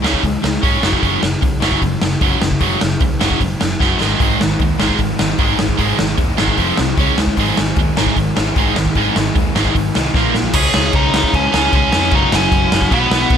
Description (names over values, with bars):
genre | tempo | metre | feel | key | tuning
punk rock | 151 BPM | 4/4 | straight | Db major | A4 = 440 Hz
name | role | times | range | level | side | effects
biting overdriven guitar | riff | 0.0-13.4 s | F2 to Db4 | -22 LUFS | left 13 dB | none
biting overdriven guitar | riff | 0.0-13.4 s | F2 to Db4 | -19 LUFS | right 14 dB | none
picked electric bass | bass | 0.0-13.4 s | F1 to Ab2 | -22 LUFS | equal | none
raw garage drum kit | drums | 0.0-13.4 s | crash cymbal, hi-hat, kick drum, snare drum | -17 LUFS | equal | none
overdriven semi-hollow guitar | riff | 4.2-10.5 s | Ab2 to C5 | -22 LUFS | right 1 dB | none
nasal lead guitar with a parked wah | melody | 10.6-13.4 s | Cb4 to Ab4 | -17 LUFS | left 1 dB | overdrive
room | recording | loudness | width
little or no reverb | faint mains hum | -13 LUFS | side -8 dB against mid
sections
0.0-10.6 A section; 10.6-13.4 B section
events
drum fill 3.8-4.2, 10.2-10.6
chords
0.0 Db5; 0.8 Gb5; 4.0 Ab5; 4.2 Ab; 6.6 F5; 7.0 Db5; 7.4 Ab; 10.2 Bb5; 10.6 Db; 12.1 Gb5